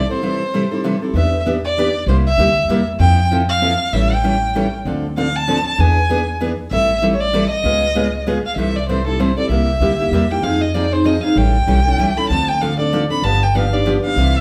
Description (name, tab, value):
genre	acoustic string swing (jazz manouche)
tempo	194 BPM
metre	3/4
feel	swing 59% on 8ths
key	C major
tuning	A4 = 443 Hz
part	warm violin	melody	0.0-14.4 s	A4 to B5	-21 LUFS	equal	none
part	picked steel-string acoustic guitar	accompaniment	0.0-14.4 s	C3 to A4	-21 LUFS	equal	none
part	upright bass	bass	0.0-14.4 s	G1 to F2	-21 LUFS	equal	none
room	wet large studio reverb, RT60 0.9 s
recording	band playing live in one room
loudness	-17 LUFS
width	mono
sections	0.0-1.1 A section; 1.1-8.6 B section; 8.6-14.4 A section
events	none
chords	0.0 C6; 1.1 Em7; 2.1 C7; 3.0 Fmaj7; 3.9 A7; 4.9 Dm7; 5.8 E7; 6.7 Am7; 7.6 Db9; 8.6 C6; 9.5 C7; 10.4 Fm7; 11.4 A7; 12.3 Dm7; 13.2 G7